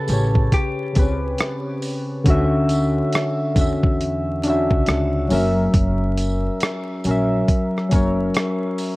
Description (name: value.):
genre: lo-fi hip hop.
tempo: 69 BPM.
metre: 4/4.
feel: swing 64% on 16ths.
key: unclear.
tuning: A4 = 440 Hz.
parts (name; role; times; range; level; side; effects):
vintage hollow-body jazz guitar; melody; 0.0-1.8 s; G4 to A4; -29 LUFS; equal; low-pass filter, tape echo.
soft electric-piano-like synth keys; accompaniment; 0.0-9.0 s; C#3 to E5; -20 LUFS; left 1 dB; chorus, cassette tape, low-pass filter.
upright bass; bass; 0.1-8.3 s; F#1 to E2; -23 LUFS; equal; none.
dusty soul sampler-style drum kit; drums; 0.1-9.0 s; hi-hat, kick drum, rim click; -20 LUFS; equal; none.
tambourine; percussion; 0.1-9.0 s; none; -39 LUFS; right 4 dB; none.
room: digital ambience.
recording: vinyl crackle.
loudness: -17 LUFS.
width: side -20 dB against mid.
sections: 0.0-9.0 A section.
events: none.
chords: 0.0 A7; 2.3 Dmaj9; 5.3 F#7.